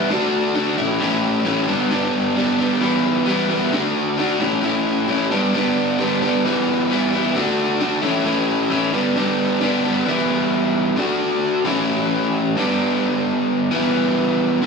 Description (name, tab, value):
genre	rock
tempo	132 BPM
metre	4/4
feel	straight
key	E dorian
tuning	A4 = 441 Hz
part	overdriven electric guitar	solo	0.0-14.7 s	G2 to F#4	-17 LUFS	equal	tape echo
room	light reverb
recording	studio reverb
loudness	-17 LUFS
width	side -5 dB against mid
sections	0.0-10.1 A section; 10.1-14.7 B section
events	none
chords	0.1 D; 0.8 A; 1.7 G; 2.8 Em; 3.7 D; 4.4 A; 5.3 G; 6.4 Em; 7.3 D; 8.0 A; 8.9 G; 10.1 Em; 11.0 D; 11.7 A; 12.6 G; 13.7 Em